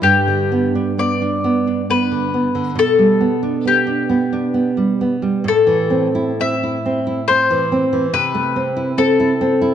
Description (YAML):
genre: romantic duo for mandolin and classical guitar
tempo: 67 BPM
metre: 3/4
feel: uneven beats, rubato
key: G major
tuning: A4 = 441 Hz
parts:
  - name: mandolin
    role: melody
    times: 0.0-9.7 s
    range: G4 to E5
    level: -17 LUFS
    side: left 5 dB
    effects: none
  - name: nylon-string guitar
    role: accompaniment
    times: 0.0-9.7 s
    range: G2 to E4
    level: -17 LUFS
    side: right 3 dB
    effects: none
room: light reverb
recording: dark, warm production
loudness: -14 LUFS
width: side -9 dB against mid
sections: 0.0-9.7 A section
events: none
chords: 0.0 G; 2.8 G/B; 5.5 Am; 8.1 Am/C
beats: | 0.03 1.01 1.91 | 2.79 3.68 4.58 | 5.48 6.42 7.29 | 8.13 8.98